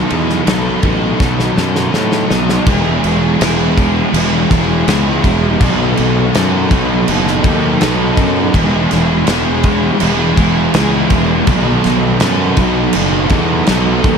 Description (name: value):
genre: rock, shoegaze and dream pop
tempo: 82 BPM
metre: 4/4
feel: straight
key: E major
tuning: A4 = 439 Hz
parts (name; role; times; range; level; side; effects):
- biting overdriven guitar; riff; 0.0-14.2 s; B2 to A4; -13 LUFS; equal; wide subtle chorus
- fuzz fingered electric bass; bass; 0.0-14.2 s; E1 to A2; -17 LUFS; equal; overdrive
- loose indie drum kit; drums; 0.1-14.2 s; crash cymbal, kick drum, ride cymbal, snare drum; -17 LUFS; equal; none
room: moderate cathedral reverb, RT60 5.6 s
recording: dreamy mix soaked in reverb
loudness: -11 LUFS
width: side -6 dB against mid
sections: 0.0-2.7 A section; 2.7-14.2 B section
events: drum fill 1.2-2.7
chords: 0.0 B7(no3); 2.7 E; 5.6 B7; 8.5 E; 11.5 B7(no3)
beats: 0.47 1.21 1.94 | 2.67 3.41 4.14 4.88 | 5.61 6.34 7.07 7.81 | 8.54 9.27 10.01 10.74 | 11.47 12.21 12.95 13.68